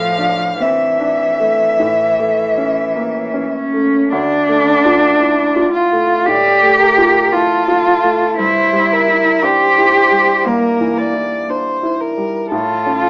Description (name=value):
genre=classical, slow romantic movement for piano trio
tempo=49-59 BPM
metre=4/4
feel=rubato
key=D minor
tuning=A4 = 441 Hz
part: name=warm violin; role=melody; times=0.0-13.1 s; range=A4 to F5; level=-16 LUFS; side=equal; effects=none
part: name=warm cello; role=second line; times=0.0-13.1 s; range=E3 to G4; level=-13 LUFS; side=equal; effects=none
part: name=warm grand piano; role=accompaniment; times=0.0-13.1 s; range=D2 to F4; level=-19 LUFS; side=equal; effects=none
room=moderate large studio reverb, RT60 0.9 s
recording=worn, warbling old tape, cassette tape, warbly pitch drift, small speaker sound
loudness=-11 LUFS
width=side -30 dB against mid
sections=0.0-4.1 A section; 4.1-13.1 B section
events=none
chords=0.0 Asus4; 1.8 A; 4.1 Dm; 8.4 Edim/G; 12.5 A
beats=0.61 1.81 2.96 | 4.12 5.20 6.27 7.33 | 8.39 9.44 10.47 11.50 | 12.52